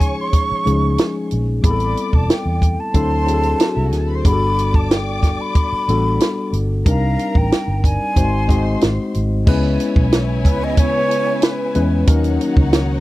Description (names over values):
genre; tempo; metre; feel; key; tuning
lush 1970s-style soul; 92 BPM; 4/4; straight; C# minor from 9.5 s; A4 = 441 Hz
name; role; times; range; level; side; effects
breathy concert flute; melody; 0.0-11.9 s; B4 to Db6; -22 LUFS; right 1 dB; none
warm studio string section; second line; 0.0-13.0 s; D#4 to D6; -30 LUFS; left 2 dB; none
tine electric piano; accompaniment; 0.0-13.0 s; F3 to Eb5; -21 LUFS; left 3 dB; overdrive
vintage muted fingered electric bass; bass; 0.0-13.0 s; E1 to E2; -19 LUFS; equal; none
compact cocktail drum kit; drums; 0.0-12.9 s; crash cymbal, hi-hat, kick drum, snare drum; -15 LUFS; equal; none
vibraphone with medium mallets; texture; 1.0-12.3 s; F#4 to Ab5; -32 LUFS; right 1 dB; none
string machine, violins; sustained chords; 9.5-13.0 s; C#3 to F#4; -27 LUFS; equal; ensemble chorus
room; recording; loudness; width
little or no reverb; dry, close 1970s-style studio recording; -14 LUFS; side -17 dB against mid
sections
0.0-9.5 A section; 9.5-13.0 B section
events
none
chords
0.0 Dbadd9; 1.6 Am9; 3.0 D9; 4.3 Gmaj9; 6.9 Cm9; 8.2 Ab7; 9.5 C#m7; 12.1 D#m7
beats
0.34 0.99 | 1.64 2.30 2.95 3.60 | 4.26 4.91 5.56 6.21 | 6.87 7.52 8.17 8.82 | 9.47 10.12 10.78 11.43 | 12.08 12.73